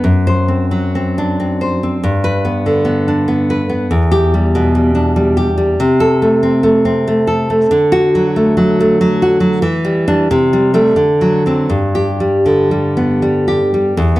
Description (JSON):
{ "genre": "romantic piece for solo classical guitar", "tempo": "78-98 BPM", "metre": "3/4", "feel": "rubato", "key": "G major", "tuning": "A4 = 440 Hz", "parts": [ { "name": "nylon-string guitar", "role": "solo", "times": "0.0-14.2 s", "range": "E2 to C5", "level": "-11 LUFS", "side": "equal", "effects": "none" } ], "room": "moderate recital hall reverb, RT60 1.5 s", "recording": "dark, warm production", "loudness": "-11 LUFS", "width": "side -17 dB against mid", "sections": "0.0-14.0 A section", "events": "none", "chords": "0.1 D7/F#; 2.0 G; 3.9 Em7; 5.8 Am/C; 7.7 D; 9.6 Em7; 10.3 Am7/C; 11.0 D7; 11.7 G", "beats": "| 0.05 0.73 1.38 | 2.02 2.65 3.28 | 3.91 4.54 5.16 | 5.78 6.41 7.05 | 7.69 8.34 8.98 | 9.62 10.29 10.97 | 11.69 12.46 13.22 | 13.97" }